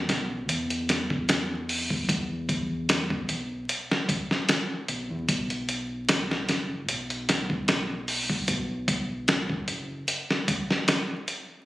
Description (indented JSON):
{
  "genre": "trip hop",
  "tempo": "75 BPM",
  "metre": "4/4",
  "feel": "swing 54% on 16ths",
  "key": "unclear",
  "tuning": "A4 = 440 Hz",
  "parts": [
    { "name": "deep dub fingered electric bass", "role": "bass", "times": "0.0-10.0 s", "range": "F#1 to E2", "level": "-32 LUFS", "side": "equal", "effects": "tube saturation" },
    { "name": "dusty soul sampler-style drum kit", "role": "drums", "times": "0.1-11.5 s", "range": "hi-hat, kick drum, snare drum", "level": "-25 LUFS", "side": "equal", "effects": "none" }
  ],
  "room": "light reverb",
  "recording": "recorded on a phone in the room, studio reverb, vinyl crackle",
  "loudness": "-25 LUFS",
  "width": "side -17 dB against mid",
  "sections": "0.0-11.7 A section",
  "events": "none",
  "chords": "none"
}